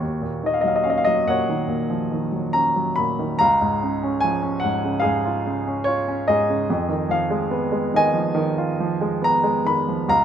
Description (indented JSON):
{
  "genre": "classical, lyrical solo piano",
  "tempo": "72 BPM",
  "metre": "4/4",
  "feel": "rubato",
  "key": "Eb minor",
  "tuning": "A4 = 440 Hz",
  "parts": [
    { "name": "warm grand piano", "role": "solo", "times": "0.0-10.2 s", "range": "Db2 to Cb6", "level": "-19 LUFS", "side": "equal", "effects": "none" }
  ],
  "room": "moderate studio ambience, RT60 0.5 s",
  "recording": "minimal, uncompressed stereo recording",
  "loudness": "-19 LUFS",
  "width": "side -9 dB against mid",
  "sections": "0.0-10.2 A section",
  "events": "none",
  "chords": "0.0 Ebm9; 3.4 Bbm7/Db; 6.7 Fm7b5"
}